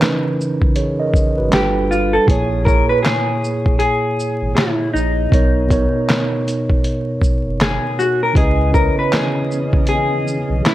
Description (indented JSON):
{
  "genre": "lo-fi hip hop",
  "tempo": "79 BPM",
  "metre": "4/4",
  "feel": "swing 63% on 16ths",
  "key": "C# dorian",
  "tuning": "A4 = 440 Hz",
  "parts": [
    { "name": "mellow electric guitar", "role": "melody", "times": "0.0-10.7 s", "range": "D#4 to B4", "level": "-20 LUFS", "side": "left 1 dB", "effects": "wide subtle chorus, low-pass filter, tape echo" },
    { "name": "mellow tine electric piano", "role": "accompaniment", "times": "0.0-10.7 s", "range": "A#2 to D#5", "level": "-19 LUFS", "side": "right 2 dB", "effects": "medium stereo tremolo, low-pass filter" },
    { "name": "lo-fi sampler-style drum kit", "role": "drums", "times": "0.0-10.7 s", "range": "handclaps, hi-hat, kick drum, shaker, snare drum", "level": "-17 LUFS", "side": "equal", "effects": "none" },
    { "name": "warm sub bass", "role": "bass", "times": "1.4-10.6 s", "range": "F#1 to C#2", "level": "-20 LUFS", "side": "equal", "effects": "none" },
    { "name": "granular cloud pad", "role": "sustained chords", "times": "9.0-10.7 s", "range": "E3 to D#5", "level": "-28 LUFS", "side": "left 2 dB", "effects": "built-in reverb, low-pass filter" }
  ],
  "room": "light reverb",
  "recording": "vinyl crackle",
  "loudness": "-14 LUFS",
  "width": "side -14 dB against mid",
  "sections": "0.0-10.7 A section",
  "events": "none",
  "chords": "0.0 C#m9; 1.5 G9; 2.3 A#m7b5; 5.3 Bmaj9; 8.4 C#m9",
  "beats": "0.00 0.76 1.52 | 2.28 3.04 3.80 4.56 | 5.32 6.08 6.84 7.60 | 8.36 9.12 9.87 10.63"
}